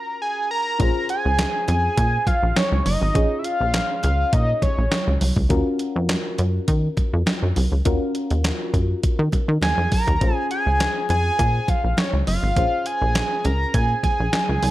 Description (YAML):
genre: early-eighties boogie funk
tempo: 102 BPM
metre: 4/4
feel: straight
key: Bb minor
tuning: A4 = 440 Hz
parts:
  - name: fat analog lead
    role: melody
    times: 0.0-5.2, 9.6-14.7 s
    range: Db5 to Bb5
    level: -23 LUFS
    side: equal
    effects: phaser, slapback echo
  - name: mellow FM electric piano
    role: accompaniment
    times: 0.0-14.7 s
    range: Db4 to Db5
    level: -30 LUFS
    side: left 2 dB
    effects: chorus, phaser
  - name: plucky analog bass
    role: bass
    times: 0.8-14.7 s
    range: Gb1 to Eb3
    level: -21 LUFS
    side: equal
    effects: none
  - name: clean 12-bit digital drum machine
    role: drums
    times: 0.8-14.7 s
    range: handclaps, hi-hat, kick drum, snare drum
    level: -23 LUFS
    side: equal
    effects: none
  - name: congas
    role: percussion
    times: 0.8-14.7 s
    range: none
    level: -30 LUFS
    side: right 2 dB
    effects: none
room: little or no reverb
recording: none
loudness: -18 LUFS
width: side -15 dB against mid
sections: 0.8-14.7 A section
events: break 0.0-0.8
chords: 0.0 Ebm7 (rootless); 0.8 Bbm7; 5.5 Ebm7; 10.2 Bbm7